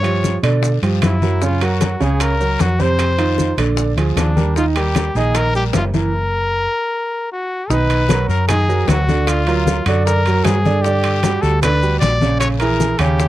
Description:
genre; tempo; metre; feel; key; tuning
Afro-Cuban jazz; 153 BPM; 4/4; straight; unclear; A4 = 440 Hz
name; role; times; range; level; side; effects
clear trumpet; melody; 0.0-13.3 s; D4 to D5; -20 LUFS; left 2 dB; none
warm grand piano; accompaniment; 0.0-13.3 s; C3 to Fb5; -20 LUFS; right 5 dB; none
hollow-body short-scale fingered electric bass; bass; 0.0-13.3 s; Gb1 to B2; -18 LUFS; equal; none
bongos; percussion; 0.0-13.3 s; none; -26 LUFS; left 10 dB; none
maracas; percussion; 0.0-13.3 s; none; -32 LUFS; right 7 dB; none
timbales; percussion; 0.0-13.2 s; none; -26 LUFS; right 5 dB; none
congas; percussion; 0.1-13.3 s; none; -22 LUFS; left 2 dB; none
guiro; percussion; 0.2-13.3 s; none; -33 LUFS; left 18 dB; none
room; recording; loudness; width
light reverb; dry, close 1970s-style studio recording; -14 LUFS; side -14 dB against mid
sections
0.0-7.7 A section; 7.7-13.3 B section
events
stop 6.1-7.7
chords
0.0 G7#11; 1.4 Gb; 3.0 F5; 3.8 Bb6; 4.6 Eb; 6.1 Gb; 7.7 Bmaj7; 9.3 Daug; 10.8 Gmaj7; 12.4 A#m7b5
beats
0.24 0.64 1.03 | 1.42 1.81 2.21 2.60 | 2.99 3.38 3.78 4.17 | 4.56 4.96 5.35 5.74 | 6.13 6.53 6.92 7.31 | 7.71 8.10 8.49 8.88 | 9.28 9.67 10.06 10.45 | 10.84 11.24 11.63 12.02 | 12.41 12.80 13.19

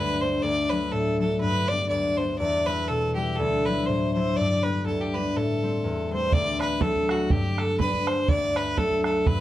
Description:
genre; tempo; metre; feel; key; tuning
celtic folk, Celtic polka; 122 BPM; 2/4; swing 56% on 8ths; unclear; A4 = 439 Hz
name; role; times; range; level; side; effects
clear fiddle; melody; 0.0-9.4 s; F#4 to D5; -26 LUFS; right 1 dB; none
concert harp; accompaniment; 0.0-9.4 s; D2 to E4; -26 LUFS; left 2 dB; none
bodhran; percussion; 6.3-9.4 s; none; -26 LUFS; right 3 dB; none
room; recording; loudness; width
light reverb; dry, close 1970s-style studio recording; -22 LUFS; side -13 dB against mid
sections
0.0-6.3 A section; 6.3-9.4 A section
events
none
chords
0.4 D; 1.4 G; 2.4 Em; 3.4 Dadd9; 4.4 G; 5.3 Am7; 6.3 D; 7.3 G; 8.3 D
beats
| 0.44 0.93 | 1.42 1.91 | 2.40 2.89 | 3.38 3.87 | 4.36 4.85 | 5.34 5.83 | 6.32 6.81 | 7.30 7.79 | 8.29 8.78 | 9.27

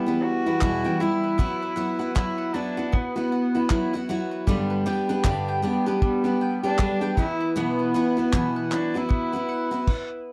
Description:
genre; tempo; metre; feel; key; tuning
acoustic pop; 78 BPM; 4/4; swing 60% on 16ths; unclear; A4 = 440 Hz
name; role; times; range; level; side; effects
warm cello; melody; 0.0-10.1 s; B3 to F#4; -30 LUFS; equal; none
picked steel-string acoustic guitar; accompaniment; 0.0-9.9 s; E2 to G4; -27 LUFS; equal; none
bowl-back mandolin; arpeggios; 0.0-10.3 s; G3 to G5; -35 LUFS; equal; none
cloth-damped thuddy drum kit; drums; 0.6-10.1 s; crash cymbal, handclaps, kick drum; -25 LUFS; equal; none
room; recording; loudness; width
moderate small room reverb, RT60 0.5 s; dark, warm production; -24 LUFS; mono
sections
0.0-10.3 A section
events
none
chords
0.0 Em; 1.4 Bsus4/F#; 4.5 G; 7.2 Bsus4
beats
0.62 | 1.39 2.16 2.93 3.70 | 4.47 5.25 6.02 6.79 | 7.56 8.33 9.10 9.87

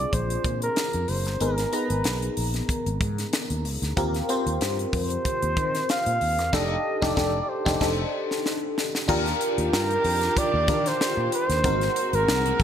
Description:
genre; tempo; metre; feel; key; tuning
polished 1980s jazz-funk pop; 94 BPM; 4/4; swing 54% on 16ths; Eb major; A4 = 440 Hz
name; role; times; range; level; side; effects
mellow flugelhorn; melody; 0.0-12.6 s; Bb4 to F5; -26 LUFS; right 1 dB; none
FM electric piano; accompaniment; 0.0-12.6 s; Cb4 to Bb5; -28 LUFS; left 1 dB; analog chorus
sustaining fretless electric bass; bass; 0.0-12.6 s; F1 to Eb3; -28 LUFS; equal; none
crisp fusion drum kit; drums; 0.1-12.6 s; crash cymbal, hi-hat, kick drum, snare drum; -28 LUFS; left 1 dB; none
warm studio string section; sustained chords; 9.1-12.6 s; Eb3 to G4; -33 LUFS; right 3 dB; none
room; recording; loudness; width
moderate plate reverb, RT60 1.6 s, studio reverb; bright 1980s-style digital production; -22 LUFS; side -9 dB against mid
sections
0.0-9.1 A section; 9.1-12.6 B section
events
band accent 6.5-9.1; drum fill 7.8-9.1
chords
0.0 Bb9; 1.4 Abmadd9; 4.0 Eb6; 6.5 F13; 9.1 Ebmaj9; 11.6 Ab9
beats
0.13 0.77 | 1.41 2.05 2.69 3.33 | 3.97 4.61 5.25 5.89 | 6.53 7.17 7.81 8.45 | 9.09 9.73 10.37 11.01 | 11.64 12.28

